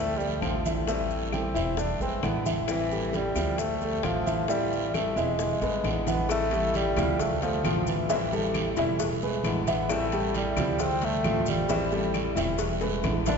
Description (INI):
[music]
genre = latin, Cuban son and guajira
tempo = 133 BPM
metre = 4/4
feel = straight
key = A minor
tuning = A4 = 444 Hz
[part]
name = clear bassoon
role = melody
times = 0.0-13.4 s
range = E3 to D4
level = -30 LUFS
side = equal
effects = none
[part]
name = dark grand piano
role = arpeggios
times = 0.0-13.4 s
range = E3 to F5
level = -30 LUFS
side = right 1 dB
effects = none
[part]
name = upright bass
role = bass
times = 0.0-13.4 s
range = E1 to D2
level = -33 LUFS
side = right 1 dB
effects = none
[part]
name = congas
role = percussion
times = 0.2-13.4 s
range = none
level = -36 LUFS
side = right 1 dB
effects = none
[part]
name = maracas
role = percussion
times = 0.2-13.4 s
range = none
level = -45 LUFS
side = left 6 dB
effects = none
[part]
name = nylon-string guitar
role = accompaniment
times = 0.4-13.4 s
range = D3 to F4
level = -33 LUFS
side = left 3 dB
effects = none
[part]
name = bongos and cowbell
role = percussion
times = 0.4-13.4 s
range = none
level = -36 LUFS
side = left 3 dB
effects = none
[part]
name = claves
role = percussion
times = 0.4-13.3 s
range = none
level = -44 LUFS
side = left 5 dB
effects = none
[part]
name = guiro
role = percussion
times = 0.4-13.4 s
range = none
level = -40 LUFS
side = right 6 dB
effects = none
[sound]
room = wet cathedral reverb, RT60 5.1 s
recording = recorded in a church or concert hall, nothing above 7.6 kHz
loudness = -24 LUFS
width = side -5 dB against mid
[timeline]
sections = 0.0-6.3 A section; 6.3-13.4 B section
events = drum fill 5.6-6.3, 12.8-13.4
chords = 0.0 Dm7; 0.9 Am7; 1.8 E7; 2.7 Am7; 3.6 Dm7; 4.5 Am7; 5.4 E7; 6.3 Am7; 7.2 Dm7; 8.1 Am7; 9.0 E7; 9.9 Am7; 10.8 Dm7; 11.7 Am7; 12.6 E7